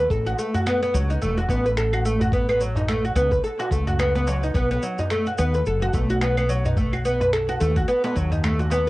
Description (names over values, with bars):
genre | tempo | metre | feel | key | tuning
organic downtempo | 108 BPM | 4/4 | swing 58% on 16ths | B mixolydian | A4 = 440 Hz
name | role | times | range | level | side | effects
oud | arpeggios | 0.0-8.9 s | F#3 to B4 | -22 LUFS | equal | cassette tape, analog delay, plate reverb
woody fretless electric bass | bass | 0.0-8.9 s | E1 to D#2 | -23 LUFS | equal | tube saturation
electronic kick drum | drums | 0.1-8.3 s | none | -25 LUFS | equal | cassette tape
electronic shaker, finger snaps and claves | drums | 0.1-8.8 s | none | -34 LUFS | equal | cassette tape
darbuka | percussion | 0.5-8.8 s | none | -31 LUFS | equal | none
room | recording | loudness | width
moderate booth ambience, RT60 0.2 s | home recording on cassette | -20 LUFS | side -19 dB against mid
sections
0.0-8.9 A section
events
none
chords
0.1 Aadd9; 4.5 B7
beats
| 0.10 0.66 1.22 1.77 | 2.33 2.88 3.44 3.99 | 4.55 5.11 5.66 6.22 | 6.77 7.33 7.88 8.44